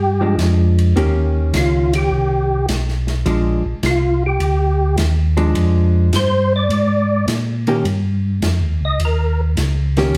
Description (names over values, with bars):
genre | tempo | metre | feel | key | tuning
soul jazz organ trio | 104 BPM | 4/4 | swing 69% on 8ths | unclear | A4 = 439 Hz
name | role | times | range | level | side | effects
percussive tonewheel organ | melody | 0.0-9.4 s | F4 to Eb5 | -22 LUFS | equal | slow rotary speaker, chorus vibrato, plate reverb
mellow tonewheel organ | bass | 0.0-10.2 s | Bb1 to Bb2 | -19 LUFS | equal | chorus vibrato, slow rotary speaker
vintage hollow-body jazz guitar | accompaniment | 0.2-10.1 s | Eb3 to G4 | -22 LUFS | equal | none
open jazz drum kit | drums | 0.4-10.2 s | hi-hat, ride cymbal, snare drum | -29 LUFS | equal | none
room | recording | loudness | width
moderate studio reverb, RT60 0.9 s | heard from further back in the room | -17 LUFS | mono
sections
0.0-10.2 A section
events
tonewheel organ solo 0.0-10.2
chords
0.0 Bb7 (rootless); 1.0 Eb7; 3.3 Bb7; 7.9 Eb7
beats
0.39 | 0.97 1.54 2.12 2.69 | 3.27 3.84 4.41 4.99 | 5.56 6.14 6.71 7.29 | 7.86 8.43 9.01 9.58 | 10.15